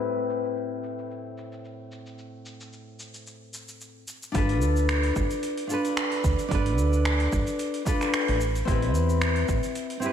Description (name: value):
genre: sunset chillout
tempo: 111 BPM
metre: 4/4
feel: swing 54% on 16ths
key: unclear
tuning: A4 = 440 Hz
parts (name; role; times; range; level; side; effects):
- nylon-string guitar; accompaniment; 0.0-10.1 s; A2 to B4; -28 LUFS; moving between left 6 dB and right 3 dB; auto-pan, digital delay, slapback echo
- deep house drum kit; drums; 0.0-10.1 s; finger snaps, hi-hat, shaker; -32 LUFS; right 2 dB; overdrive
- woody fretless electric bass; bass; 4.3-9.6 s; G1 to E2; -25 LUFS; right 2 dB; tube saturation, analog chorus
- electronic kick drum; drums; 4.3-9.6 s; none; -28 LUFS; right 2 dB; overdrive
room: moderate lush hall reverb, RT60 2.1 s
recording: big arena sound, low-pass filter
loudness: -23 LUFS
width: side -9 dB against mid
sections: 0.0-4.3 A section; 4.3-10.1 B section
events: filter sweep on drum 0.0-4.3; filter sweep on nylon-string guitar 0.0-4.3; filter sweep 0.0-4.3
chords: 0.0 Am9; 4.3 G9; 8.4 Am9